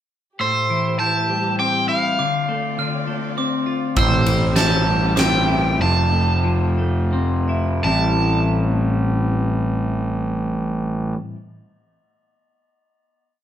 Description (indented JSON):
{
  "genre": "post-rock",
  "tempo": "81-101 BPM",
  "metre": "3/4",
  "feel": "straight",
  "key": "A minor",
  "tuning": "A4 = 441 Hz",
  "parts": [
    { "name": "crunchy overdriven guitar", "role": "melody", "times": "0.4-11.1 s", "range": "C5 to A5", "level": "-21 LUFS", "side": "right 1 dB", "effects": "none" },
    { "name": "dark chamber string section", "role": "sustained chords", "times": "0.4-5.8 s", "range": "A3 to D5", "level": "-33 LUFS", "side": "right 1 dB", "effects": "none" },
    { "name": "glockenspiel with hard plastic mallets", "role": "arpeggios", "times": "0.4-5.8 s", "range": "D6 to G6", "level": "-28 LUFS", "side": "right 4 dB", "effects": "none" },
    { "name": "twelve-string electric guitar", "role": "arpeggios", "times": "0.4-11.4 s", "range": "A2 to F4", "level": "-23 LUFS", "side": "left 3 dB", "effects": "spring reverb" },
    { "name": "fuzz picked electric bass", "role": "bass", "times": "4.0-11.1 s", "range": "F1 to A1", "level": "-20 LUFS", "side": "right 1 dB", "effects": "overdrive" },
    { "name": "huge arena drum kit", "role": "drums", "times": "4.0-5.3 s", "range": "kick drum, ride cymbal, snare drum", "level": "-23 LUFS", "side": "right 1 dB", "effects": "none" }
  ],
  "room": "wet large studio reverb, RT60 1.0 s",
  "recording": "band playing live in one room",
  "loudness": "-17 LUFS",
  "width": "side -10 dB against mid",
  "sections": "0.4-7.8 A section; 7.8-12.3 final chord",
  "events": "slowing down 4.0-7.8",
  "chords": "0.4 Am7; 2.2 Dm7; 4.0 Am7; 5.8 Fmaj7; 7.8 Am7"
}